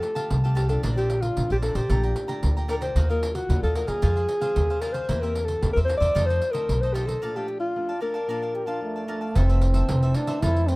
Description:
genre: samba and choro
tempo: 113 BPM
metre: 4/4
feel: straight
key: Bb major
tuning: A4 = 439 Hz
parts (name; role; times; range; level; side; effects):
- breathy alto saxophone; melody; 0.0-9.0 s; F4 to D5; -26 LUFS; left 1 dB; none
- cavaquinho; accompaniment; 0.0-10.7 s; D4 to Bb5; -36 LUFS; right 1 dB; none
- nylon-string guitar; accompaniment; 0.0-10.8 s; F2 to Ab4; -36 LUFS; left 2 dB; none
- pandeiro; percussion; 0.0-10.8 s; none; -32 LUFS; right 2 dB; none
- upright bass; bass; 0.3-10.8 s; F1 to F2; -23 LUFS; equal; none
- breathy trombone; second line; 8.5-10.8 s; A3 to G4; -27 LUFS; right 1 dB; none
room: small room reverb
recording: rough home demo mix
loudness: -22 LUFS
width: side -23 dB against mid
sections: 0.0-9.4 A section; 9.4-10.8 B section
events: break 7.2-9.4; trombone solo 9.4-10.8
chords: 0.0 Fadd9; 0.8 Bbadd9; 1.9 Gmadd9/Bb; 3.0 Ebmadd9; 4.0 Fm; 5.1 C7/E; 6.2 F7; 7.2 Bbmaj7; 9.4 Fmaj7

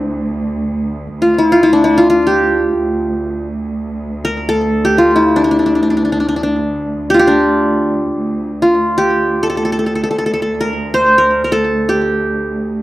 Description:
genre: Turkish makam ensemble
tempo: free time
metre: none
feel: none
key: D makam ussak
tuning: A4 = 439 Hz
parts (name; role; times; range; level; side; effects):
- qanun; melody; 0.0-12.8 s; C4 to C5; -12 LUFS; equal; slapback echo
- muted studio cello section; drone; 0.0-12.8 s; D2; -20 LUFS; right 2 dB; none
room: moderate booth ambience, RT60 0.3 s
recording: dry, close 1970s-style studio recording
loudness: -12 LUFS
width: side -16 dB against mid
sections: 0.0-8.2 A section; 8.2-12.8 A section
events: none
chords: none

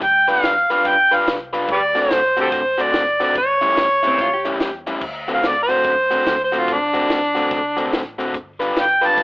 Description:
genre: electric blues shuffle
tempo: 144 BPM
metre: 4/4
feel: swing 64% on 8ths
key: D mixolydian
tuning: A4 = 440 Hz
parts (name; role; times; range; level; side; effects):
- overdriven harmonica; melody; 0.0-9.2 s; D4 to A5; -16 LUFS; equal; plate reverb
- overdriven electric guitar; riff; 0.0-9.2 s; A2 to B4; -22 LUFS; left 1 dB; none
- vintage muted fingered electric bass; bass; 0.0-9.2 s; F1 to A2; -45 LUFS; equal; none
- compact cocktail drum kit; drums; 0.0-9.2 s; crash cymbal, hi-hat, kick drum, snare drum; -26 LUFS; equal; none
- electric slide guitar; second line; 4.1-4.7 s; C4 to G4; -25 LUFS; equal; none
room: moderate small room reverb, RT60 0.5 s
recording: telephone sound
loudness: -15 LUFS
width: side -25 dB against mid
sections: 0.0-5.0 A section; 5.0-9.2 B section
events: harmonica solo 5.0-9.2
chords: 0.0 G7; 1.7 D7; 3.4 A7; 5.0 D7; 8.3 G7

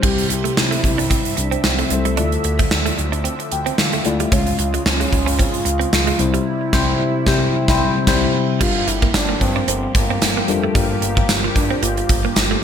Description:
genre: 1980s-style pop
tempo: 112 BPM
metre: 4/4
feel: swing 55% on 16ths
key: unclear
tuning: A4 = 440 Hz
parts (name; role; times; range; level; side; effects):
- mellow French horn; melody; 0.0-12.4 s; A3 to G4; -24 LUFS; right 1 dB; none
- mellow tine electric piano; accompaniment; 0.0-12.6 s; G2 to G5; -22 LUFS; left 5 dB; phaser
- phased analog pad; sustained chords; 0.0-12.6 s; C3 to E5; -28 LUFS; equal; phaser, chorus
- direct-recorded clean electric guitar; riff; 0.0-12.6 s; F3 to D4; -27 LUFS; right 8 dB; wide subtle chorus, ping-pong delay
- smooth synth bass; bass; 0.0-12.6 s; F1 to G2; -24 LUFS; equal; none
- gated 80s drum kit; drums; 0.0-12.5 s; crash cymbal, hi-hat, kick drum, snare drum, tambourine; -18 LUFS; right 1 dB; gated reverb
room: light reverb, small room ambience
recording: bright 1980s-style digital production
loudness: -15 LUFS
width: side -8 dB against mid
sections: 0.0-8.6 A section; 8.6-12.6 B section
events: tine electric piano fill 3.3-4.3; band accent 6.5-8.6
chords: 0.0 C; 2.2 Dmadd9; 4.3 Db; 6.2 C; 8.6 Gm7

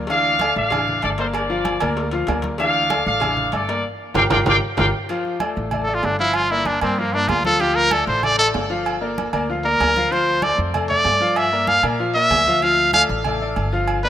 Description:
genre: latin, salsa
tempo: 192 BPM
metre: 4/4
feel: straight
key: D minor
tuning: A4 = 440 Hz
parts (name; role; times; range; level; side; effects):
- bright grand piano; accompaniment; 0.0-14.1 s; E3 to F5; -24 LUFS; left 2 dB; none
- upright bass; bass; 0.0-14.1 s; G1 to Bb2; -27 LUFS; equal; none
- bright trumpet section; melody; 0.1-4.9 s; A4 to G5; -21 LUFS; equal; none
- agogo bells and timbales; percussion; 0.1-14.0 s; none; -27 LUFS; right 4 dB; none
- congas; percussion; 0.1-14.1 s; none; -32 LUFS; equal; none
- cowbell; percussion; 0.1-4.8 s; none; -34 LUFS; left 5 dB; none
- bright trumpet; melody; 5.8-14.1 s; Bb3 to F5; -18 LUFS; right 1 dB; none
room: moderate plate reverb, RT60 3.5 s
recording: rough home demo mix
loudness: -17 LUFS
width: side -10 dB against mid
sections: 0.0-5.1 A section; 5.1-14.1 B section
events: drum fill 3.8-5.1; band accent 3.8-5.1; trumpet solo 5.1-14.1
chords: 0.1 Dmadd9; 1.3 Gm7; 2.6 Dmadd9; 3.8 Gm7; 5.1 Dm; 6.3 Gm7; 7.6 Dm; 8.9 Gm7; 10.1 Dm; 11.4 Gm7; 12.6 Dm

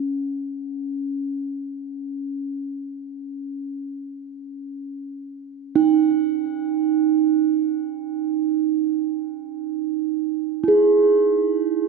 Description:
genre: world meditative, free-time meditation music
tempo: free time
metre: none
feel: none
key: C# hirajoshi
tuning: A4 = 441 Hz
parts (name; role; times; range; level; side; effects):
- bronze singing bowl; solo; 0.0-11.9 s; C#4 to G#4; -20 LUFS; right 5 dB; ping-pong delay
room: moderate scoring stage reverb, RT60 1.8 s, small room reverb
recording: dark, warm production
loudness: -19 LUFS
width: side -3 dB against mid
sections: 0.0-10.3 A section; 10.3-11.9 A section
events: none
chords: none

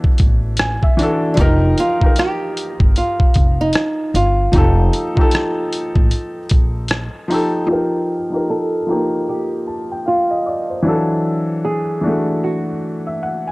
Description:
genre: lo-fi hip hop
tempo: 76 BPM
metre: 4/4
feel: swing 61% on 16ths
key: F mixolydian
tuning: A4 = 440 Hz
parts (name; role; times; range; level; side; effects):
- nylon-string guitar; melody; 0.0-13.5 s; B3 to A4; -21 LUFS; right 1 dB; low-pass filter
- felt-muted upright piano; accompaniment; 0.0-13.5 s; E3 to A5; -19 LUFS; left 1 dB; low-pass filter
- boom bap sampler-style drum kit; drums; 0.0-7.5 s; hi-hat, kick drum, rim click; -15 LUFS; equal; none
- upright bass; bass; 0.2-7.1 s; F1 to Bb1; -18 LUFS; equal; none
room: light reverb, small room ambience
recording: dry, gritty hardware recording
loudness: -15 LUFS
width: side -24 dB against mid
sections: 0.0-7.7 A section; 7.7-13.5 B section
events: filter sweep 7.7-13.5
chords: 0.0 E9sus4; 1.4 F9sus4; 10.8 E9sus4

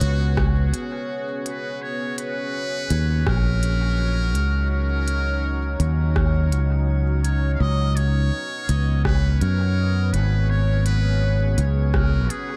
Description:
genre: ambient dub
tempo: 83 BPM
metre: 4/4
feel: swing 58% on 16ths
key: unclear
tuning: A4 = 440 Hz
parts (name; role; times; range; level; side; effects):
- trumpet with metal mute; melody; 0.0-12.6 s; Gb4 to F5; -32 LUFS; equal; dub echo
- deep dark ambient pad; sustained chords; 0.0-12.6 s; Gb3 to Db5; -34 LUFS; equal; chorus, built-in reverb
- fingered electric bass; bass; 0.0-12.3 s; Ab1 to Gb2; -22 LUFS; equal; none
- organic electronic drum kit; drums; 0.0-12.5 s; hi-hat, rim click; -34 LUFS; equal; dub echo
- drifting glass-harmonics texture; texture; 0.2-12.6 s; Db5; -38 LUFS; equal; chorus, built-in reverb
- electronic kick drum; drums; 0.4-12.1 s; none; -27 LUFS; equal; none
room: light reverb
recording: faint mains hum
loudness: -22 LUFS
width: mono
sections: 0.0-12.6 A section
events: none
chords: 0.0 Db7sus4; 1.8 Ebm7; 7.6 Db7sus4

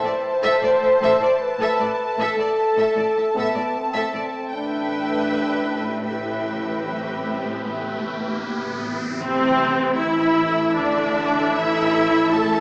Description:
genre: cinematic, suspense film score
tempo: 77 BPM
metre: 3/4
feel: straight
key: A minor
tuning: A4 = 439 Hz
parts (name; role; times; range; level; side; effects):
- warm symphonic violin section; melody; 0.0-12.6 s; E5 to A5; -30 LUFS; equal; none
- warm studio violin section; second line; 0.0-12.6 s; C5 to A5; -28 LUFS; equal; none
- warm symphonic viola section; accompaniment; 0.0-12.6 s; C4 to B4; -23 LUFS; equal; none
- granular cloud pad; sustained chords; 0.0-12.6 s; G4 to B5; -31 LUFS; equal; built-in reverb
- mellow French horn section; sustained chords; 0.0-12.6 s; A3 to C5; -23 LUFS; equal; none
- warm symphonic cello section; bass; 0.0-12.6 s; A2 to A3; -30 LUFS; equal; none
- warm symphonic double bass section; bass; 0.6-12.6 s; A1; -35 LUFS; equal; none
- timpani; percussion; 4.5-9.2 s; A2; -39 LUFS; equal; none
- riser and impact; sound effects; 6.6-11.5 s; none; -32 LUFS; equal; none
- clear trombone section; sustained chords; 9.2-12.6 s; A2 to E3; -28 LUFS; equal; none
room: wet scoring stage reverb, RT60 1.9 s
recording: small speaker sound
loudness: -18 LUFS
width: side -29 dB against mid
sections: 0.0-9.2 A section; 9.2-12.6 B section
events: timpani fill 4.5-9.2; riser 6.6-9.2; impact 9.2-11.5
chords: 0.0 Am; 4.5 Em/A; 9.2 Am

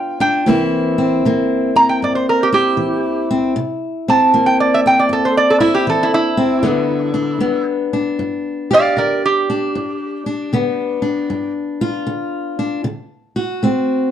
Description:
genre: acoustic country blues, solo or duo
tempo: 78 BPM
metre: 4/4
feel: swing 66% on 8ths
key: unclear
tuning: A4 = 440 Hz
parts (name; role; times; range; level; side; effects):
- metal-body resonator slide guitar; melody; 0.0-11.5 s; E4 to Bb5; -15 LUFS; right 2 dB; none
- fingerpicked steel-string acoustic guitar; accompaniment; 0.0-14.1 s; G2 to G4; -17 LUFS; left 1 dB; none
room: moderate studio reverb, RT60 0.7 s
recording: dark, warm production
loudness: -14 LUFS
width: side -10 dB against mid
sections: 0.0-14.1 A section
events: resonator guitar played with a steel bar solo 0.0-14.1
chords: 0.5 C7; 6.6 G7; 12.8 D7

